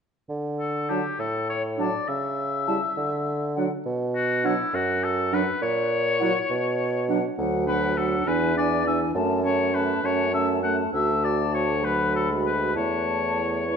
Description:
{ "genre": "quick classical-period movement for wind quintet", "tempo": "68 BPM (dotted quarters)", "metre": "6/8", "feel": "straight", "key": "D major, A major from 7.4 s", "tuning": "A4 = 441 Hz", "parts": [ { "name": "mellow bassoon", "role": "bass", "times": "0.3-13.8 s", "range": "D2 to D3", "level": "-27 LUFS", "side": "right 2 dB", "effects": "none" }, { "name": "clear oboe", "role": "second line", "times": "0.6-13.8 s", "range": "E4 to F#5", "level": "-26 LUFS", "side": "left 4 dB", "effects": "none" }, { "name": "hollow concert flute", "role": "melody", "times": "0.9-13.8 s", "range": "F#5 to C#6", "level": "-31 LUFS", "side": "left 9 dB", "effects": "none" }, { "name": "clear French horn", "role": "accompaniment", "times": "0.9-13.8 s", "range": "E3 to B3", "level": "-32 LUFS", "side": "left 1 dB", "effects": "none" }, { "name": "dark clarinet", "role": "accompaniment", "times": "0.9-13.8 s", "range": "C#4 to F#4", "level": "-30 LUFS", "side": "right 9 dB", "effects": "none" } ], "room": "moderate recital hall reverb, RT60 1.4 s", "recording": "dark, warm production, nothing above 10.4 kHz", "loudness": "-22 LUFS", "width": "side -6 dB against mid", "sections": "0.3-13.8 A section", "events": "none", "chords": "0.3 D5; 2.1 A/C# (rootless); 3.0 N.C.; 3.9 B5; 5.6 F#/A# (rootless); 6.5 N.C.; 7.4 D; 8.3 E7; 9.2 F#m; 10.9 D; 11.8 Bm/D; 12.8 A/E", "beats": "| 0.29 1.20 | 2.09 2.97 | 3.86 4.74 | 5.62 6.50 | 7.38 8.27 | 9.15 10.04 | 10.93 11.83 | 12.76 13.68" }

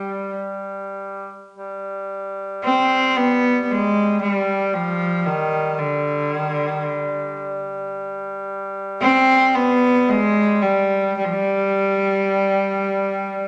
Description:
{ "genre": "caucasian folk, Caucasian lament", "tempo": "56 BPM", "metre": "3/4", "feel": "rubato", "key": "G phrygian dominant", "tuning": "A4 = 440 Hz", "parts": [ { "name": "clear cello", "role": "melody", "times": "0.0-13.5 s", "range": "D3 to C4", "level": "-20 LUFS", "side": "equal", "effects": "none" }, { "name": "clear duduk", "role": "drone", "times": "0.0-13.5 s", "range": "G3", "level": "-29 LUFS", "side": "equal", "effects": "none" } ], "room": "wet large studio reverb, RT60 1.3 s", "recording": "nothing above 10.3 kHz", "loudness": "-20 LUFS", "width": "mono", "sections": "0.0-1.5 A section; 1.5-13.5 B section", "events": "none", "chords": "none", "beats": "0.39 | 1.52 2.62 3.69 | 4.75 5.81 6.87 | 7.94 9.01 10.09 | 11.18 12.27 13.40" }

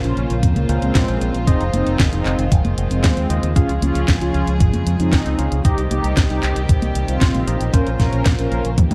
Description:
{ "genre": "italo disco", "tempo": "115 BPM", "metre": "4/4", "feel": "straight", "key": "unclear", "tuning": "A4 = 439 Hz", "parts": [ { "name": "mellow synth brass", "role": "melody", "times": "0.0-8.7 s", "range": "Ab3 to Bb4", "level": "-26 LUFS", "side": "equal", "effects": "chorus, cassette tape, tape echo" }, { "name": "warm studio string section", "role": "sustained chords", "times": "0.0-8.9 s", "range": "Db3 to C5", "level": "-29 LUFS", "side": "equal", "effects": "none" }, { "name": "overdriven tine electric piano", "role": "stabs", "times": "0.0-8.8 s", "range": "Bb2 to F5", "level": "-30 LUFS", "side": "equal", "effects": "none" }, { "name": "fingered electric bass with an envelope filter", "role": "bass", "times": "0.0-8.9 s", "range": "F1 to G2", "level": "-23 LUFS", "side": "equal", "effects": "none" }, { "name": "house drum kit", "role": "drums", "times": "0.0-8.9 s", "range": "congas, handclaps, hi-hat, snare drum, toms", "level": "-27 LUFS", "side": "equal", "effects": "none" }, { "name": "electronic kick drum", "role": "drums", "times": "0.4-8.9 s", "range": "none", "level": "-18 LUFS", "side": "equal", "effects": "none" } ], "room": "digital ambience", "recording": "dark, warm production", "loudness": "-18 LUFS", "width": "mono", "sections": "0.0-8.9 A section", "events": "drum fill 8.8", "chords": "0.0 Bbmadd9; 1.5 Fm7; 3.6 Db; 5.6 Cm; 7.7 Bbmadd9", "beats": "0.43 0.95 | 1.48 2.00 2.52 3.04 | 3.56 4.08 4.61 5.13 | 5.65 6.17 6.69 7.21 | 7.74 8.26 8.78" }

